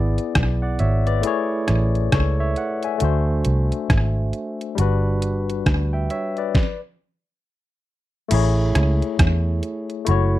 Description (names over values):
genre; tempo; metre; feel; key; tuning
lovers rock reggae; 68 BPM; 4/4; swing 61% on 16ths; A major; A4 = 440 Hz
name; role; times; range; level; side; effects
barky tine electric piano; accompaniment; 0.0-10.4 s; G3 to G#5; -24 LUFS; moving between left 8 dB and right 1 dB; auto-pan
vintage muted fingered electric bass; bass; 0.0-10.4 s; F#1 to E2; -19 LUFS; right 1 dB; none
detuned 8-bit digital drum machine; drums; 0.2-10.3 s; crash cymbal, hi-hat, kick drum, rim click, snare drum; -21 LUFS; equal; overdrive, slapback echo
room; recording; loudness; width
little or no reverb; dry, close 1970s-style studio recording; -18 LUFS; side -15 dB against mid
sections
0.0-8.3 A section; 8.3-10.4 B section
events
stop 6.5-8.3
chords
0.0 E7; 1.2 Amaj7; 3.0 D7; 4.8 Gmaj7; 6.5 N.C.; 8.3 Amaj7